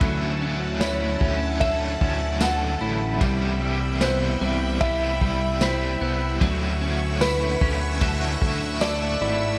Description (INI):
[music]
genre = dream pop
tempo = 75 BPM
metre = 4/4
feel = straight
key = D major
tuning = A4 = 440 Hz
[part]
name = biting overdriven guitar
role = accompaniment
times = 0.0-9.6 s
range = C3 to E4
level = -32 LUFS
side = equal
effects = tremolo, subtle chorus, slapback echo
[part]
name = string machine, violins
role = sustained chords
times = 0.0-9.6 s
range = C#4 to E6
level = -34 LUFS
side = equal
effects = phaser, ensemble chorus
[part]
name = electric guitar at the edge of break-up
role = arpeggios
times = 0.0-9.6 s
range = F#3 to A4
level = -32 LUFS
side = equal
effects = ensemble chorus, delay
[part]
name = fat analog bass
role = bass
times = 0.0-9.6 s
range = G#1 to D2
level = -29 LUFS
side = equal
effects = none
[part]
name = vintage drum kit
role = drums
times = 0.0-9.0 s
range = kick drum, ride cymbal, snare drum, tambourine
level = -30 LUFS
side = equal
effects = none
[part]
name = felt-muted upright piano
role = melody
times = 0.8-9.6 s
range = B4 to F#5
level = -30 LUFS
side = equal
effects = slapback echo, delay
[sound]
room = moderate lush hall reverb, RT60 2.5 s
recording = big arena sound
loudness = -23 LUFS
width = mono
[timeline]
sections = 0.0-9.6 A section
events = none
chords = 0.0 Dmaj9; 3.2 Cmaj7; 6.4 Dmaj9